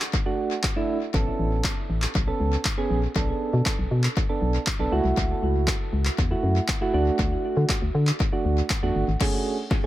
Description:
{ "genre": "dance-pop", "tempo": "119 BPM", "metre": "4/4", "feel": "straight", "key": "A major", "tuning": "A4 = 441 Hz", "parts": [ { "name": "punchy analog drum machine", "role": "drums", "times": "0.0-9.8 s", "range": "crash cymbal, handclaps, kick drum, snare drum", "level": "-26 LUFS", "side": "left 1 dB", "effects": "tape echo" }, { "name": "soft electric-piano-like synth keys", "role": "accompaniment", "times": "0.3-9.9 s", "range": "A3 to A4", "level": "-27 LUFS", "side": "right 3 dB", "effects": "chorus, sidechain pumping, tape echo" }, { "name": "organ-like FM bass", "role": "bass", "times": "1.1-9.2 s", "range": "G1 to D3", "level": "-24 LUFS", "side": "left 1 dB", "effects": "sidechain pumping" } ], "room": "light reverb", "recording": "echo-heavy mix", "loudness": "-22 LUFS", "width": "side -14 dB against mid", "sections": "0.0-9.2 A section", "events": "drum fill 9.2-9.9", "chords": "0.0 D; 1.1 Aadd9; 3.2 Bm7; 4.9 F#m7; 6.9 D; 9.2 Amaj7" }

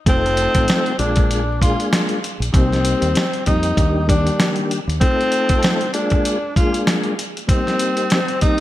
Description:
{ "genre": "hip hop, boom-bap hip-hop", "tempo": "97 BPM", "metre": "4/4", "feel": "swing 56% on 16ths", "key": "unclear", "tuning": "A4 = 439 Hz", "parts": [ { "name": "breathy tenor saxophone", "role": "melody", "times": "0.1-8.6 s", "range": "C4 to F4", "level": "-21 LUFS", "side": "equal", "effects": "high-pass filter, low-pass filter, ping-pong delay" }, { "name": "mellow tonewheel organ", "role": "accompaniment", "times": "0.1-8.6 s", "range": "Eb3 to A4", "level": "-22 LUFS", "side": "left 2 dB", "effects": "chorus vibrato, fast rotary speaker, high-pass filter, low-pass filter" }, { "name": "deep dub fingered electric bass", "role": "bass", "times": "0.1-5.0 s", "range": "F1 to F2", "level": "-21 LUFS", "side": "equal", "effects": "none" }, { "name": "dusty soul sampler-style drum kit", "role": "drums", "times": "0.1-8.6 s", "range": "hi-hat, kick drum, snare drum", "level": "-19 LUFS", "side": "equal", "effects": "none" } ], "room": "light reverb", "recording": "bright 1980s-style digital production, vinyl crackle", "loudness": "-15 LUFS", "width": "side -14 dB against mid", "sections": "0.0-8.6 A section", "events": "none", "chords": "0.1 F7; 1.0 Bb7; 2.5 Cm7; 3.8 Ebmaj7; 5.0 F7; 5.9 Bb7; 7.5 Cm7" }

